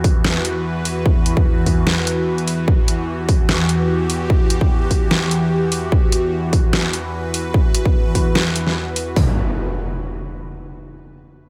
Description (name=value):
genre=heavy wobble dubstep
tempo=148 BPM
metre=4/4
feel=swing 54% on 16ths, half-time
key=E minor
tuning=A4 = 440 Hz
part: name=evolving wavetable pad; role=sustained chords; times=0.0-9.4 s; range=E2 to B4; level=-23 LUFS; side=equal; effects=phaser, built-in reverb, sidechain pumping
part: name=dubstep drum kit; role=drums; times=0.0-9.3 s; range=hi-hat, kick drum, toms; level=-18 LUFS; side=equal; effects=none
part: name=dubstep drum kit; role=drums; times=0.0-9.0 s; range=hi-hat, snare drum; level=-23 LUFS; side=equal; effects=none
part: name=impact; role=sound effects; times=9.2-10.8 s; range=none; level=-28 LUFS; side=equal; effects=none
room=light reverb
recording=none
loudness=-18 LUFS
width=mono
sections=0.0-9.2 A section; 9.2-10.8 B section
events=none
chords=0.0 Emadd9